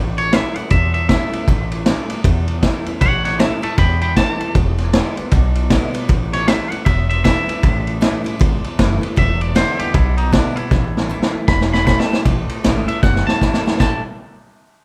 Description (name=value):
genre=rockabilly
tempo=156 BPM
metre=4/4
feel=swing 62% on 8ths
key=A major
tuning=A4 = 443 Hz
part: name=picked steel-string acoustic guitar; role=accompaniment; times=0.0-14.0 s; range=E2 to E4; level=-28 LUFS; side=equal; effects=none
part: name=upright bass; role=bass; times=0.0-14.0 s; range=E1 to E2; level=-22 LUFS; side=equal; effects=none
part: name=twangy electric guitar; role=melody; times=0.2-14.0 s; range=D4 to B5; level=-24 LUFS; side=equal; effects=none
part: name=vintage drum kit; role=drums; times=0.2-13.9 s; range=china cymbal, kick drum, ride cymbal, snare drum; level=-19 LUFS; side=equal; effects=none
room=light reverb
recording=band playing live in one room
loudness=-17 LUFS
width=mono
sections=0.0-12.3 A section; 12.3-13.8 B section; 13.8-14.8 C section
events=drum fill 10.7-12.3, 13.0-13.8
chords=0.0 A; 4.6 E7; 6.1 A; 9.2 E7; 10.7 A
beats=0.33 0.72 1.10 | 1.48 1.87 2.25 2.63 | 3.02 3.40 3.79 4.17 | 4.55 4.94 5.33 5.71 | 6.09 6.48 6.87 7.25 | 7.64 8.02 8.41 8.79 | 9.18 9.56 9.95 10.33 | 10.72 11.11 11.49 11.88 | 12.26 12.65 13.03 13.42 | 13.80